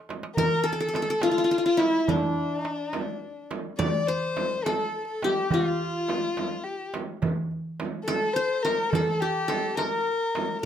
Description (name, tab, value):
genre	Arabic maqam ensemble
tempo	70 BPM (dotted quarters)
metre	6/8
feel	straight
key	A maqam kurd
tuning	A4 = 435 Hz
part	darbuka	percussion	0.1-10.5 s	none	-30 LUFS	right 2 dB	none
part	frame drum	percussion	0.1-10.5 s	none	-33 LUFS	right 4 dB	none
part	qanun	melody	0.4-10.6 s	D4 to D5	-26 LUFS	left 1 dB	plate reverb
part	warm violin	second line	0.4-10.7 s	D4 to D5	-29 LUFS	left 4 dB	none
room	moderate studio ambience, RT60 0.5 s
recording	close, detailed microphones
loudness	-24 LUFS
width	side -9 dB against mid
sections	0.4-10.7 A section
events	drum fill 0.0-0.4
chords	none